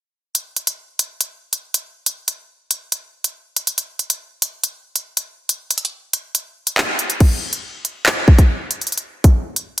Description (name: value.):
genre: hip hop.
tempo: 140 BPM.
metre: 4/4.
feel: half-time.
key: none.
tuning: none.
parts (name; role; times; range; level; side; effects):
drill drum kit; drums; 0.3-9.8 s; crash cymbal, handclaps, hi-hat, kick drum; -14 LUFS; equal; none.
room: light reverb.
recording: dense, heavily limited modern master.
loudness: -18 LUFS.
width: side -15 dB against mid.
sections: 0.3-7.2 A section; 7.2-9.8 B section.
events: none.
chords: none.